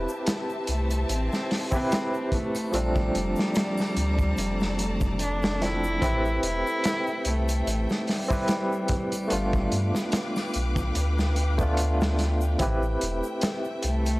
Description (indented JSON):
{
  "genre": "trip hop",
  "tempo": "73 BPM",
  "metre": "4/4",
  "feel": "swing 55% on 16ths",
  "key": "A minor",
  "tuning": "A4 = 440 Hz",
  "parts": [
    { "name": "barky tine electric piano", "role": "accompaniment", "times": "0.0-14.2 s", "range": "F3 to B4", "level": "-29 LUFS", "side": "equal", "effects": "tremolo" },
    { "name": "clear symphonic string section", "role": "sustained chords", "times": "0.0-14.2 s", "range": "A3 to D6", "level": "-36 LUFS", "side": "left 1 dB", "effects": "none" },
    { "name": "warm sub bass", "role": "bass", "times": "0.0-14.2 s", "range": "E1 to G2", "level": "-26 LUFS", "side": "equal", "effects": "tube saturation" },
    { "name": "egg shaker and triangle", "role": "percussion", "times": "0.1-14.2 s", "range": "none", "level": "-48 LUFS", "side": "left 2 dB", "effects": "none" },
    { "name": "crunchy breakbeat drum kit", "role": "drums", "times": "0.3-14.2 s", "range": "hi-hat, kick drum, snare drum", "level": "-28 LUFS", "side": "equal", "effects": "none" },
    { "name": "warm cello", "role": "melody", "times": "0.7-14.2 s", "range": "G3 to E4", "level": "-30 LUFS", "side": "equal", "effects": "vintage 12-bit sampler grit, tape echo" }
  ],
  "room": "small room ambience",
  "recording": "dry, gritty hardware recording",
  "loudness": "-23 LUFS",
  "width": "side -20 dB against mid",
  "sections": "0.0-14.2 A section",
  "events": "none",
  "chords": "0.0 Am7; 2.7 Bbmaj7; 6.0 Am7; 9.3 G7; 12.6 Am7"
}